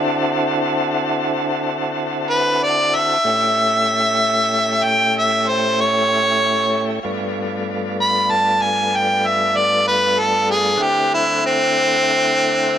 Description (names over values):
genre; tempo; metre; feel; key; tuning
blues; 63 BPM (dotted quarters); 12/8; straight; D mixolydian; A4 = 441 Hz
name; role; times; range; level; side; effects
clear harmonica; melody; 0.0-12.8 s; C4 to B5; -16 LUFS; equal; overdrive
tonewheel organ; sustained chords; 0.0-12.8 s; G2 to F#5; -21 LUFS; equal; fast rotary speaker
room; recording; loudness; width
light reverb, studio ambience; none; -15 LUFS; side -10 dB against mid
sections
0.0-12.8 A section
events
harmonica solo 0.0-12.8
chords
0.0 D7; 3.2 A7; 7.0 G7; 10.8 D7